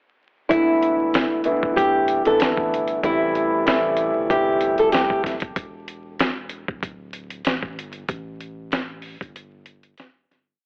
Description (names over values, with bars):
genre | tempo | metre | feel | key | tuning
hip hop, boom-bap hip-hop | 95 BPM | 4/4 | swing 54% on 16ths | unclear | A4 = 440 Hz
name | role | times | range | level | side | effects
flamenco guitar | melody | 0.5-5.2 s | E4 to A4 | -23 LUFS | equal | high-pass filter, low-pass filter, cassette tape
dark baby grand piano | accompaniment | 0.5-5.3 s | C3 to E4 | -24 LUFS | equal | cassette tape, high-pass filter, low-pass filter
soft dub sub bass | bass | 0.5-10.6 s | D1 to C2 | -42 LUFS | equal | none
dusty soul sampler-style drum kit | drums | 0.5-10.5 s | hi-hat, kick drum, snare drum | -27 LUFS | equal | cassette tape
room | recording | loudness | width
light reverb | home recording on cassette, vinyl crackle, telephone sound | -21 LUFS | mono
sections
0.5-10.6 verse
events
break 5.6-10.6; fade-out 8.1-10.6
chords
0.5 E7sus4; 3.0 Am7; 5.6 E7sus4; 8.1 Fadd9 (rootless)